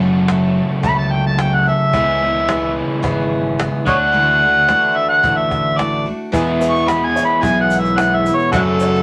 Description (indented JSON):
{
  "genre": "folk rock and heartland rock",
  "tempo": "109 BPM",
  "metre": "4/4",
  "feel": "straight",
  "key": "E major",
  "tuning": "A4 = 439 Hz",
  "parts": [
    { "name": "picked steel-string acoustic guitar", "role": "accompaniment", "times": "0.0-9.0 s", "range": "F#2 to A4", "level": "-25 LUFS", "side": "equal", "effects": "none" },
    { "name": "crunchy overdriven guitar", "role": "riff", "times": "0.0-9.0 s", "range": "E2 to G#4", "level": "-23 LUFS", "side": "equal", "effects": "none" },
    { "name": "fingered electric bass", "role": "bass", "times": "0.0-9.0 s", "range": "G#1 to F#2", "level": "-24 LUFS", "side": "equal", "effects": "none" },
    { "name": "cajon", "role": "drums", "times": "0.0-8.9 s", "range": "none", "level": "-26 LUFS", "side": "equal", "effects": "none" },
    { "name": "overdriven harmonica", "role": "melody", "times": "0.8-9.0 s", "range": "D4 to C#6", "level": "-18 LUFS", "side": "equal", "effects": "none" },
    { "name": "warm concert grand piano", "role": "accompaniment", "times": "6.3-9.0 s", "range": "E4 to C#5", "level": "-26 LUFS", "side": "equal", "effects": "none" },
    { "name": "egg shaker", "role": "percussion", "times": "6.3-9.0 s", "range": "none", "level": "-42 LUFS", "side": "equal", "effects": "none" }
  ],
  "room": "moderate studio reverb, RT60 0.6 s",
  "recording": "none",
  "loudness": "-16 LUFS",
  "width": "mono",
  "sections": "0.0-9.0 A section",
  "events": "harmonica solo 0.0-9.0",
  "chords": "0.0 F#m; 1.9 C#m7; 3.9 Dadd9; 6.3 E"
}